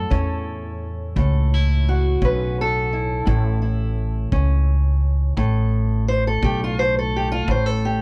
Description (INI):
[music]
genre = acoustic country blues, solo or duo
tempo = 57 BPM (dotted quarters)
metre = 12/8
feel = straight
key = unclear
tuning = A4 = 440 Hz
[part]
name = fingerpicked steel-string acoustic guitar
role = melody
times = 0.0-8.0 s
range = A2 to C5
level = -26 LUFS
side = equal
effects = none
[part]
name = upright bass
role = bass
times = 0.0-8.0 s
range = A1 to E2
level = -23 LUFS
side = equal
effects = none
[part]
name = kick drum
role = drums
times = 0.1-7.6 s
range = none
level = -26 LUFS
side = equal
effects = none
[sound]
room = little or no reverb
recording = none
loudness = -20 LUFS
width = mono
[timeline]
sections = 0.0-8.0 A section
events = none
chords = 0.0 A